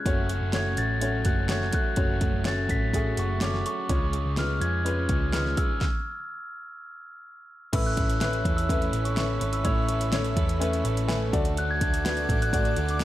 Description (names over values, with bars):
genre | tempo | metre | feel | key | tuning
piano-driven pop | 125 BPM | 4/4 | straight | unclear | A4 = 442 Hz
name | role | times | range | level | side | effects
glockenspiel with rubber mallets | melody | 0.0-13.0 s | C#6 to B6 | -31 LUFS | left 1 dB | none
bright upright piano | accompaniment | 0.0-13.0 s | A2 to A5 | -31 LUFS | left 2 dB | none
overdriven semi-hollow guitar | riff | 0.1-13.0 s | F#2 to B4 | -35 LUFS | right 4 dB | none
hollow-body short-scale picked electric bass | bass | 0.1-13.0 s | F#1 to E#2 | -28 LUFS | equal | none
pop drum kit | drums | 0.1-13.0 s | crash cymbal, hi-hat, kick drum, snare drum | -28 LUFS | equal | none
airy breathy pad | sustained chords | 8.1-13.0 s | A4 to D6 | -38 LUFS | equal | chorus
room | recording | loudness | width
light reverb | none | -23 LUFS | side -14 dB against mid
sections
0.0-7.7 A section; 7.7-13.0 B section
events
stop 5.8-7.7; upright piano fill 10.6-11.6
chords
0.1 F#m; 3.9 C#; 5.8 N.C.; 7.7 Aadd9; 11.3 D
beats
| 0.06 0.54 1.02 1.50 | 1.98 2.46 2.94 3.42 | 3.90 4.38 4.86 5.34 | 5.82 6.29 6.78 7.25 | 7.74 8.21 8.69 9.17 | 9.65 10.13 10.61 11.09 | 11.57 12.05 12.53 13.01